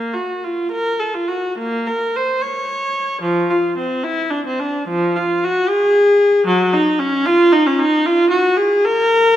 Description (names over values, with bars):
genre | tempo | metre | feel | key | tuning
classical, baroque-style suite movement for unaccompanied viola | 74 BPM (dotted quarters) | 6/8 | uneven beats, rubato | Bb minor | A4 = 436 Hz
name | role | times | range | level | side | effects
warm viola | solo | 0.0-9.4 s | F3 to Db5 | -14 LUFS | equal | none
room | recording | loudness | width
wet recital hall reverb, RT60 1.9 s | none | -14 LUFS | side -12 dB against mid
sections
0.0-9.4 A section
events
none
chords
none